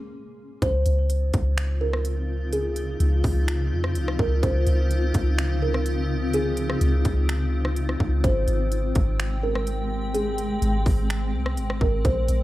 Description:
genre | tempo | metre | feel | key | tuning
hip hop, atmospheric cloud-rap | 126 BPM | 4/4 | half-time | Db lydian | A4 = 439 Hz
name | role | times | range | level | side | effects
kalimba | melody | 0.6-12.4 s | Ab4 to C5 | -30 LUFS | right 2 dB | low-pass filter, tape echo
granular cloud pad | sustained chords | 1.6-12.4 s | Db3 to G5 | -29 LUFS | left 2 dB | built-in reverb
soft 808-style bass | bass | 0.6-12.4 s | Ab1 to F2 | -23 LUFS | equal | none
trap drum kit | drums | 0.6-12.4 s | finger snaps, hi-hat, kick drum, rim click | -26 LUFS | equal | none
room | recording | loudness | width
little or no reverb | dry, gritty hardware recording | -21 LUFS | side -16 dB against mid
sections
0.6-12.4 A section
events
stop 0.0-0.6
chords
0.0 N.C.; 0.6 Dbmaj9; 8.2 Abmaj7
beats
0.14 | 0.62 1.10 1.57 2.05 | 2.52 3.00 3.48 3.95 | 4.43 4.91 5.38 5.86 | 6.33 6.81 7.29 7.76 | 8.24 8.72 9.19 9.67 | 10.14 10.62 11.10 11.57 | 12.05

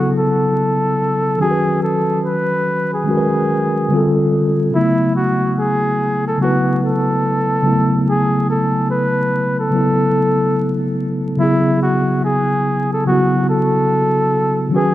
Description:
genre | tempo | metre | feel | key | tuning
hip hop | 72 BPM | 4/4 | swing 65% on 16ths | F# dorian | A4 = 440 Hz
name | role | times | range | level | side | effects
trumpet with bucket mute | melody | 0.0-14.9 s | E4 to B4 | -18 LUFS | equal | tape echo
mellow tine electric piano | accompaniment | 0.0-14.9 s | C#3 to B4 | -16 LUFS | equal | fast stereo tremolo
room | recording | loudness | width
moderate spring reverb, RT60 2.1 s | dark, warm production, vinyl crackle | -14 LUFS | side -14 dB against mid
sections
0.0-11.4 A section; 11.4-14.9 B section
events
none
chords
0.0 F#m11; 1.4 G#m7; 3.9 G9sus4; 4.7 F#m7; 11.4 F#m11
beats
0.57 | 1.40 2.23 3.07 3.90 | 4.73 5.57 6.40 7.23 | 8.07 8.90 9.73 10.57 | 11.40 12.23 13.07 13.90 | 14.73

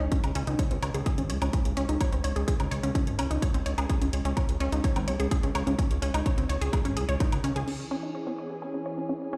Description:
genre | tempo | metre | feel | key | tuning
melodic techno | 127 BPM | 4/4 | straight | unclear | A4 = 437 Hz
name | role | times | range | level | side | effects
unison pluck | arpeggios | 0.0-9.4 s | B#3 to C#5 | -35 LUFS | equal | cassette tape, sidechain pumping, delay
fat analog bass | bass | 0.0-7.6 s | G#1 to C#2 | -31 LUFS | equal | sidechain pumping
electronic kick drum | drums | 0.1-7.3 s | none | -29 LUFS | equal | none
house drum kit | drums | 0.1-7.8 s | crash cymbal, hi-hat, woodblock | -40 LUFS | equal | none
lush unison pad | sustained chords | 7.7-9.4 s | E3 to G#4 | -37 LUFS | equal | chorus, sidechain pumping
room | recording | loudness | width
light reverb | played on a big sound system in a bare room, large studio reverb | -28 LUFS | mono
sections
0.0-7.7 A section; 7.7-9.4 B section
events
filter sweep on synth arpeggio sound 0.0-7.7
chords
0.0 G#sus4; 7.7 C#m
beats
| 0.12 0.59 1.06 1.53 | 2.01 2.48 2.95 3.42 | 3.90 4.37 4.84 5.31 | 5.79 6.26 6.73 7.20 | 7.68 8.15 8.62 9.09

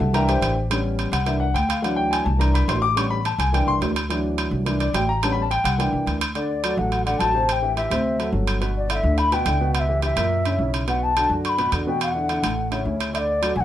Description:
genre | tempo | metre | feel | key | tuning
Afro-Cuban jazz | 212 BPM | 4/4 | straight | D major | A4 = 440 Hz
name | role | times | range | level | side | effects
warm concert grand piano | accompaniment | 0.0-13.6 s | A2 to D6 | -24 LUFS | left 1 dB | none
upright bass | bass | 0.0-13.6 s | G1 to F#2 | -24 LUFS | equal | none
timbales | percussion | 0.1-13.6 s | none | -28 LUFS | right 4 dB | none
wooden flute | melody | 6.4-13.6 s | D5 to C#6 | -23 LUFS | left 2 dB | none
room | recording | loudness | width
moderate studio reverb, RT60 0.5 s | band playing live in one room | -19 LUFS | side -12 dB against mid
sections
0.0-6.4 A section; 6.4-13.6 B section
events
grand piano solo 0.0-6.4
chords
0.1 C7; 0.7 A7; 1.3 C7; 1.8 Dadd9; 2.4 C7; 3.0 A7; 3.5 C7; 4.1 Dadd9; 4.7 C7; 5.2 A7; 5.8 C7; 6.4 D; 7.5 Am7; 8.0 D7; 8.6 G6; 9.7 C#m7b5; 10.3 F#7; 10.9 Bm7; 12.0 E9sus4; 12.6 A; 13.1 D6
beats
0.14 0.42 | 0.70 0.99 1.27 1.55 | 1.83 2.12 2.40 2.68 | 2.96 3.25 3.53 3.81 | 4.09 4.38 4.66 4.94 | 5.22 5.51 5.79 6.07 | 6.35 6.64 6.92 7.20 | 7.48 7.77 8.05 8.33 | 8.61 8.90 9.18 9.46 | 9.74 10.03 10.31 10.59 | 10.88 11.16 11.44 11.72 | 12.01 12.29 12.57 12.86 | 13.14 13.42

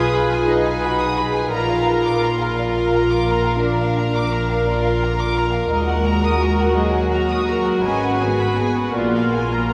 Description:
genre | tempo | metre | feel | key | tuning
classical, slow romantic movement for string orchestra | 57 BPM (dotted quarters) | 12/8 | rubato | unclear | A4 = 440 Hz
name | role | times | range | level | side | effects
dark studio violin section | melody | 0.0-9.7 s | F4 to Cb5 | -28 LUFS | equal | none
dark studio violin section | second line | 0.0-9.7 s | D5 to Eb6 | -28 LUFS | equal | none
warm studio viola section | accompaniment | 0.0-9.7 s | F4 to Cb5 | -24 LUFS | equal | none
dark studio double bass section | bass | 0.0-9.7 s | Ab1 to Eb2 | -26 LUFS | equal | none
warm studio cello section | bass | 0.0-9.7 s | Gb3 to F4 | -24 LUFS | equal | none
room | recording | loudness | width
wet cathedral reverb, RT60 5.2 s | none | -19 LUFS | mono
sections
0.0-9.7 A section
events
none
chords
0.0 Abm/Cb; 1.5 Bb; 5.7 Ebm; 7.9 Abm7; 9.0 Bb7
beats
0.49 | 1.54 2.59 3.64 4.68 | 5.72 6.78 7.85 8.96

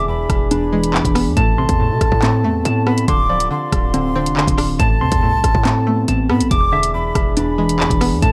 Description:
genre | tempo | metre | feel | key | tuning
hip hop, drill | 140 BPM | 4/4 | half-time | A harmonic minor | A4 = 440 Hz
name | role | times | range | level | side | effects
mellow silver concert flute | second line | 0.0-8.3 s | A5 to D6 | -24 LUFS | equal | tape echo
string-like resonator pluck | accompaniment | 0.0-8.3 s | E2 to D4 | -24 LUFS | equal | chorus, phaser, low-pass filter
warm brass ensemble | sustained chords | 0.0-8.3 s | C3 to A4 | -28 LUFS | equal | none
mellow electric guitar | arpeggios | 0.0-8.3 s | D3 to D6 | -23 LUFS | equal | low-pass filter, tape echo
hard-hitting 808-style bass | bass | 0.0-8.3 s | D1 to C3 | -24 LUFS | equal | none
drill drum kit | drums | 0.3-8.3 s | handclaps, hi-hat, kick drum, rim click | -21 LUFS | equal | none
room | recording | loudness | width
little or no reverb | none | -16 LUFS | mono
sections
0.0-8.3 A section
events
none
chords
0.0 E7; 1.4 Amadd9; 3.1 Dm7; 4.8 Amadd9; 6.5 E7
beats
0.08 0.51 0.94 | 1.37 1.80 2.23 2.65 | 3.08 3.51 3.94 4.37 | 4.80 5.22 5.65 6.08 | 6.51 6.94 7.37 7.80 | 8.22

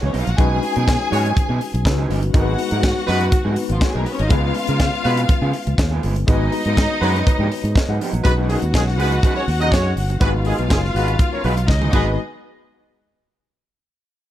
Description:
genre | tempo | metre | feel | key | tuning
disco | 122 BPM | 4/4 | straight | G# dorian | A4 = 440 Hz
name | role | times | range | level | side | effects
electric guitar at the edge of break-up | accompaniment | 0.0-12.1 s | F#3 to A#4 | -29 LUFS | right 7 dB | none
tine electric piano | accompaniment | 0.0-12.2 s | G#3 to F#5 | -26 LUFS | left 5 dB | overdrive, fast stereo tremolo
fingered electric bass | bass | 0.0-12.2 s | F#1 to C#3 | -20 LUFS | equal | none
clear studio string section | second line | 0.1-12.2 s | E#3 to G#5 | -25 LUFS | left 2 dB | none
tight funk drum kit | drums | 0.1-12.1 s | crash cymbal, hi-hat, kick drum, snare drum, toms | -20 LUFS | equal | none
mellow horn section | stabs | 1.1-12.1 s | D#3 to D#5 | -24 LUFS | equal | none
room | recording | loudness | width
little or no reverb | none | -16 LUFS | side -12 dB against mid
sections
0.0-8.2 A section; 8.2-12.2 B section; 12.2-14.1 C section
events
tine electric piano fill 6.8-8.2; drum fill 11.7-12.2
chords
0.4 B69; 2.3 G#m7; 4.3 C#7; 6.3 G#m7; 8.2 B69; 10.2 G#m7; 12.2 N.C.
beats
| 0.38 0.88 1.36 1.86 | 2.35 2.84 3.33 3.82 | 4.31 4.80 5.29 5.79 | 6.28 6.77 7.26 7.75 | 8.24 8.74 9.23 9.72 | 10.21 10.71 11.20 11.69 | 12.18

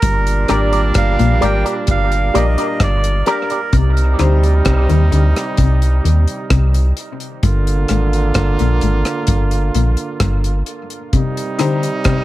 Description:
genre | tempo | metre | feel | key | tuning
dub reggae | 65 BPM | 4/4 | straight | G phrygian | A4 = 440 Hz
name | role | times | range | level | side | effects
melodica | melody | 0.0-3.8 s | Bb4 to G5 | -22 LUFS | right 3 dB | dub echo
warm horn section | second line | 0.0-12.2 s | Bb2 to F4 | -22 LUFS | right 3 dB | dub echo
clean electric guitar | riff | 0.0-12.2 s | G2 to Eb3 | -20 LUFS | left 4 dB | dub echo
warm sub bass | bass | 0.0-10.6 s | G1 to Eb2 | -15 LUFS | equal | none
deep reggae drum kit | drums | 0.0-12.2 s | hi-hat, kick drum, rim click | -19 LUFS | equal | none
electric guitar with an envelope filter | accompaniment | 0.5-3.6 s | G4 to D5 | -24 LUFS | right 3 dB | wide subtle chorus, dub echo
clear upright piano | stabs | 0.5-4.4, 11.6-11.8 s | D4 to C5 | -24 LUFS | left 5 dB | dub echo
room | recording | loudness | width
small room ambience | none | -13 LUFS | side -16 dB against mid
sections
0.0-12.2 A section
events
none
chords
0.0 Gm; 3.7 Cm; 7.4 Gm; 11.1 Cm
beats
| 0.03 0.95 1.88 2.81 | 3.73 4.66 5.58 6.50 | 7.43 8.35 9.28 10.20 | 11.13 12.05

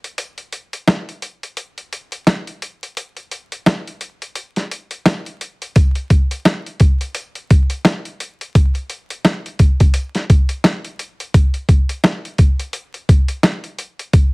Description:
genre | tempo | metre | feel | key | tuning
hip hop | 86 BPM | 4/4 | swing 58% on 16ths | none | none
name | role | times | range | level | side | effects
boom bap sampler-style drum kit | drums | 0.0-14.3 s | hi-hat, kick drum, snare drum | -14 LUFS | equal | none
room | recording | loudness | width
little or no reverb | heavily compressed radio sound, multiband compression, vinyl crackle | -14 LUFS | side -33 dB against mid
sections
0.0-14.3 A section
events
break 0.0-5.8; kick muted 4.4-5.8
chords
none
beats
| 0.18 0.88 1.57 2.27 | 2.97 3.67 4.37 5.06 | 5.76 6.46 7.16 7.85 | 8.55 9.25 9.95 10.64 | 11.34 12.04 12.74 13.44 | 14.13

